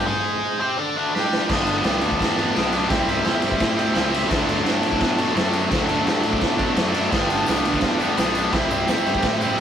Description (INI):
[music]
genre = garage rock duo or trio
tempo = 170 BPM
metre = 4/4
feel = straight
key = unclear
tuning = A4 = 440 Hz
[part]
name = biting overdriven guitar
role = riff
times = 0.0-9.6 s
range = G2 to D5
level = -21 LUFS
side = equal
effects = none
[part]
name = fuzz picked electric bass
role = bass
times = 0.0-9.6 s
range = G1 to B2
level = -28 LUFS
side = equal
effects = overdrive
[part]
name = tambourine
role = percussion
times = 0.0, 7.3-9.6 s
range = none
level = -44 LUFS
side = left 4 dB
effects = none
[part]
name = raw garage drum kit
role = drums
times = 1.2-9.5 s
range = crash cymbal, kick drum, ride cymbal, snare drum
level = -22 LUFS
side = equal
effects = none
[sound]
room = light reverb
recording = rough rehearsal-room recording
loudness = -18 LUFS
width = side -9 dB against mid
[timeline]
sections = 0.0-1.5 A section; 1.5-9.6 B section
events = break 0.1-1.5; drum fill 1.1-1.5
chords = 0.1 G#5; 0.6 D5; 1.1 G5; 1.5 G; 2.9 C; 4.3 D; 7.1 G; 8.5 C